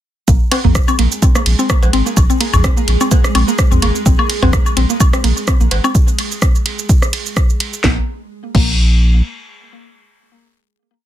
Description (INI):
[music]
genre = minimal techno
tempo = 127 BPM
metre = 4/4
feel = swing 55% on 16ths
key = unclear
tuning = A4 = 440 Hz
[part]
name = mallet-like synth pluck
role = riff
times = 0.3-8.7 s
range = Bb3 to C4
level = -20 LUFS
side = equal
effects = chorus, sidechain pumping, digital delay
[part]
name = saturated sub bass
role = bass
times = 0.3-9.2 s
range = Ab1 to Bb1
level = -14 LUFS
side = equal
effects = sidechain pumping
[part]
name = electronic kick drum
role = drums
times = 0.3-8.7 s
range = none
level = -13 LUFS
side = equal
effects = none
[part]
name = garage drum kit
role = drums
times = 0.3-8.7 s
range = crash cymbal, hi-hat, ride cymbal, rim click, shaker, snare drum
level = -20 LUFS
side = right 2 dB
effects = soft clipping on snare
[part]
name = pulsing gated texture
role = texture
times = 0.7-7.8 s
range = Ab3 to Ab4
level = -26 LUFS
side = right 2 dB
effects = chorus, built-in reverb, sidechain pumping
[part]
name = electronic cowbell, woodblock and toms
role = percussion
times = 0.5-5.9 s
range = none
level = -19 LUFS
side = left 1 dB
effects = ping-pong delay
[sound]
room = little or no reverb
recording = dense, heavily limited modern master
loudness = -11 LUFS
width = side -12 dB against mid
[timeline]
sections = 0.3-7.8 drop; 7.8-11.1 final note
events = drop 0.3-7.8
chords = 0.3 Absus2; 7.8 N.C.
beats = | 0.28 0.75 1.22 1.70 | 2.17 2.64 3.11 3.59 | 4.06 4.53 5.00 5.48 | 5.95 6.42 6.89 7.37 | 7.84 8.31 8.78